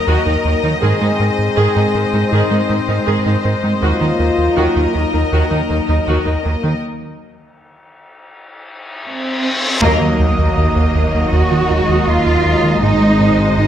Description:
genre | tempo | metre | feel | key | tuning
cinematic, hybrid orchestral and electronic film score | 80 BPM | 4/4 | straight | Eb dorian | A4 = 440 Hz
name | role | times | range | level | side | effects
rich studio violin section | second line | 0.0-13.7 s | Bb4 to Eb5 | -23 LUFS | left 4 dB | none
warm French horn section | sustained chords | 0.0-6.8, 11.3-13.7 s | Gb3 to Bb4 | -21 LUFS | left 4 dB | none
warm analog pad | sustained chords | 0.0-13.7 s | Gb3 to Eb5 | -22 LUFS | right 1 dB | chorus
clear symphonic viola section | accompaniment | 0.1-13.7 s | Eb3 to Ab4 | -23 LUFS | right 1 dB | none
round analog bass | riff | 0.1-13.7 s | Eb2 to Ab3 | -17 LUFS | right 1 dB | none
warm symphonic cello section | bass | 0.1-13.7 s | Eb2 to Gb4 | -20 LUFS | right 2 dB | none
reverse cymbal and sub drop | sound effects | 8.6-12.8 s | none | -23 LUFS | left 1 dB | none
warm symphonic violin section | melody | 9.8-13.7 s | Eb5 | -23 LUFS | left 3 dB | none
clear symphonic double bass section | bass | 9.8-13.7 s | Ab1 to Eb2 | -20 LUFS | right 2 dB | none
room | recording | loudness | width
wet scoring stage reverb, RT60 1.8 s | none | -13 LUFS | side -10 dB against mid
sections
0.0-9.8 A section; 9.8-13.7 A section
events
break 6.8-9.8; reverse cymbal 8.6-9.8; band accent 9.8-10.6; impact 9.8-12.8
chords
0.0 Ebm; 0.8 Ab; 3.8 Ebm; 6.8 N.C.; 9.8 Ebm; 12.8 Ab

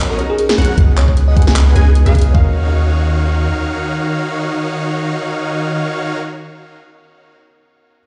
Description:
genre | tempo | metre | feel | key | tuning
future bass | 153 BPM | 4/4 | swing 55% on 16ths, half-time | Eb minor | A4 = 438 Hz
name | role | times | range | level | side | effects
bell-like FM electric piano | melody | 0.0-1.5 s | Ab4 to Ab5 | -23 LUFS | equal | chorus, sidechain pumping, dub echo
warm concert grand piano | accompaniment | 0.0-8.0 s | Cb4 to F5 | -28 LUFS | equal | sidechain pumping, delay
unison pluck | arpeggios | 0.0-6.2 s | D#5 to Ab5 | -32 LUFS | equal | sidechain pumping
supersaw chords | riff | 0.0-6.2 s | Eb3 to Ab5 | -22 LUFS | equal | vintage 12-bit sampler grit, sidechain pumping, delay
long sustained 808-style bass | bass | 0.0-3.5 s | B1 to Eb2 | -14 LUFS | equal | sidechain pumping
pop drum kit | drums | 0.2-2.3 s | handclaps, hi-hat, snare drum | -22 LUFS | equal | overdrive
electronic kick drum | drums | 0.8-2.4 s | none | -15 LUFS | equal | overdrive
room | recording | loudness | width
little or no reverb | played on a big sound system in a bare room, large studio reverb, nothing above 10.3 kHz | -15 LUFS | mono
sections
0.0-2.3 A section; 2.3-5.5 B section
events
drop 0.0-2.3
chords
0.0 Bmaj7; 0.8 Db9sus4; 2.3 Ebm9

